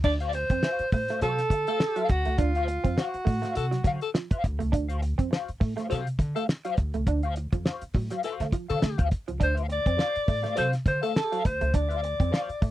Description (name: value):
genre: funk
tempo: 103 BPM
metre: 4/4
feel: swing 56% on 16ths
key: D mixolydian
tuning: A4 = 440 Hz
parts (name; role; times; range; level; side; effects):
- breathy alto saxophone; melody; 0.0-4.1, 9.4-12.7 s; E#4 to D5; -28 LUFS; equal; none
- mellow electric guitar; accompaniment; 0.0-12.7 s; F#4 to E#5; -32 LUFS; left 5 dB; wah, phaser
- electric guitar through a small old amp; riff; 0.0-12.7 s; E#3 to D4; -33 LUFS; right 6 dB; analog chorus
- upright bass; bass; 0.0-12.7 s; C#2 to D3; -29 LUFS; equal; none
- cloth-damped thuddy drum kit; drums; 0.0-12.7 s; crash cymbal, hi-hat, kick drum, snare drum; -26 LUFS; equal; none
- breathy tenor saxophone; second line; 1.2-11.4 s; A4; -32 LUFS; left 9 dB; none
room: little or no reverb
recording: dry, close 1970s-style studio recording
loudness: -24 LUFS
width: side -14 dB against mid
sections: 0.0-12.7 A section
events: none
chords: 0.0 D7#9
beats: | 0.04 0.63 1.22 1.80 | 2.39 2.98 3.56 4.14 | 4.73 5.31 5.90 6.48 | 7.07 7.65 8.23 8.82 | 9.40 9.98 10.57 11.15 | 11.74 12.32